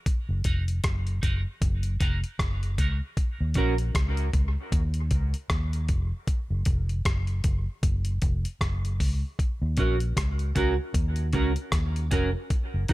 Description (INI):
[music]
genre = dub reggae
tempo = 77 BPM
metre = 4/4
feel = swing 58% on 16ths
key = Eb minor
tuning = A4 = 440 Hz
[part]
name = dusty soul sampler-style drum kit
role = drums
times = 0.1-12.9 s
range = hi-hat, kick drum, rim click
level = -27 LUFS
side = equal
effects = none
[part]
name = vintage muted fingered electric bass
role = bass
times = 0.3-12.9 s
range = F1 to Eb2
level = -26 LUFS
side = equal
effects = none
[part]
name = clean electric guitar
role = accompaniment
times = 0.4-3.7, 9.8-12.9 s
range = Db4 to Bb4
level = -31 LUFS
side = right 3 dB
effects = lush chorus, high-pass filter, dub echo
[sound]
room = little or no reverb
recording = none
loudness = -24 LUFS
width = side -18 dB against mid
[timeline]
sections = 0.0-12.9 A section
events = none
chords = 0.0 Ebm7; 6.3 Gb5; 9.4 Ebm7